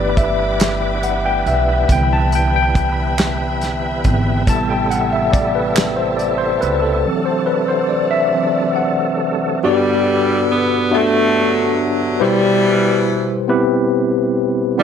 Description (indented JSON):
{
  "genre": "slow gospel",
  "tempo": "46 BPM (dotted quarters)",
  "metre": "6/8",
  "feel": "straight",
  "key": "G major",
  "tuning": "A4 = 440 Hz",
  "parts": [
    { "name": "tine electric piano", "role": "accompaniment", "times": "0.0-14.8 s", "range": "G2 to A5", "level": "-16 LUFS", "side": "left 2 dB", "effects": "medium stereo tremolo" },
    { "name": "bright tonewheel organ", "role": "sustained chords", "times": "0.0-9.6 s", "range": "C3 to B4", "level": "-24 LUFS", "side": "right 5 dB", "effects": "fast rotary speaker, chorus vibrato" },
    { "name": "dark studio string section", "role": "sustained chords", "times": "0.0-9.6 s", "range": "D5 to D6", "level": "-29 LUFS", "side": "left 2 dB", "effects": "none" },
    { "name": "upright bass", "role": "bass", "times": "0.0-7.0 s", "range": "G1 to C#2", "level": "-21 LUFS", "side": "right 1 dB", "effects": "none" },
    { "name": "warm soul drum kit", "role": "drums", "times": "0.2-6.8 s", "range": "hi-hat, kick drum, snare drum", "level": "-18 LUFS", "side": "right 1 dB", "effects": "none" },
    { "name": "group handclap", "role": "percussion", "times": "0.6-6.2 s", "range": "none", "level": "-24 LUFS", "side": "right 6 dB", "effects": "none" },
    { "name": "edgy saxophone section", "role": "melody", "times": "9.6-14.8 s", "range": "B2 to B3", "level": "-16 LUFS", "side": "equal", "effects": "none" }
  ],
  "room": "light reverb",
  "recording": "none",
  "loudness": "-14 LUFS",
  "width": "side -8 dB against mid",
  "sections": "0.0-9.6 A section; 9.6-14.8 B section",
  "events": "tine electric piano solo 0.0-9.6",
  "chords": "0.0 G6; 1.9 Cmaj7; 4.5 Am7; 7.1 D7; 9.6 Gmaj7; 12.2 Cmaj7"
}